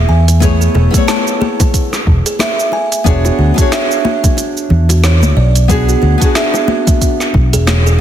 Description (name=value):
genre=sunset chillout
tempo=91 BPM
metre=4/4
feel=swing 57% on 16ths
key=A major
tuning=A4 = 440 Hz
part: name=nylon-string guitar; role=accompaniment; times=0.0-8.0 s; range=A3 to C#5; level=-18 LUFS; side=moving between left 6 dB and right 1 dB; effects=auto-pan, tape echo
part: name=fingered electric bass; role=bass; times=0.0-8.0 s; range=E1 to E2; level=-10 LUFS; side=equal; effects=none
part: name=buzzing kalimba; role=arpeggios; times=0.1-8.0 s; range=F#4 to A5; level=-19 LUFS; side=right 4 dB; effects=tape echo
part: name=smooth R&B drum kit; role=drums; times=0.3-8.0 s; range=cabasa, hi-hat, snare drum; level=-18 LUFS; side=right 1 dB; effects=none
part: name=bongos and congas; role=percussion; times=0.3-7.8 s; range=none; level=-21 LUFS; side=left 4 dB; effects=none
part: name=electronic kick drum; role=drums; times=0.4-7.5 s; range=none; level=-13 LUFS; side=equal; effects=none
room=light reverb, digital ambience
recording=dense, heavily limited modern master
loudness=-9 LUFS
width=side -10 dB against mid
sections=0.0-8.0 A section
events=none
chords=0.0 Amaj7; 3.1 E13